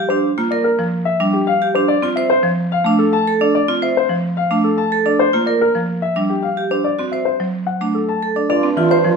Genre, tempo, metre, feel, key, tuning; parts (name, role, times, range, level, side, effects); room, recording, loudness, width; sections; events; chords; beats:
classical, minimalist pattern music; 109 BPM; 3/4; straight; F major; A4 = 438 Hz
vibraphone with hard mallets; arpeggios; 0.0-9.1 s; D4 to C5; -19 LUFS; right 6 dB
warm grand piano; melody; 0.1-9.1 s; G4 to A5; -18 LUFS; left 5 dB
buzzing marimba with medium hard mallets; accompaniment; 0.4-9.2 s; E3 to C4; -21 LUFS; right 1 dB
bright wooden-headed alto flute; second line; 8.5-9.2 s; F4; -21 LUFS; right 8 dB
warm bassoon; bass; 8.5-9.2 s; G2; -20 LUFS; right 4 dB
moderate large studio reverb, RT60 1.3 s; -15 LUFS; side -5 dB against mid
0.0-8.5 A section
0.0 Bb6; 1.9 F; 5.2 Bb6; 6.8 D7; 8.5 G7sus4
| 0.24 0.79 1.34 | 1.89 2.44 2.99 | 3.54 4.09 4.64 | 5.19 5.74 6.29 | 6.84 7.39 7.95 | 8.49 9.05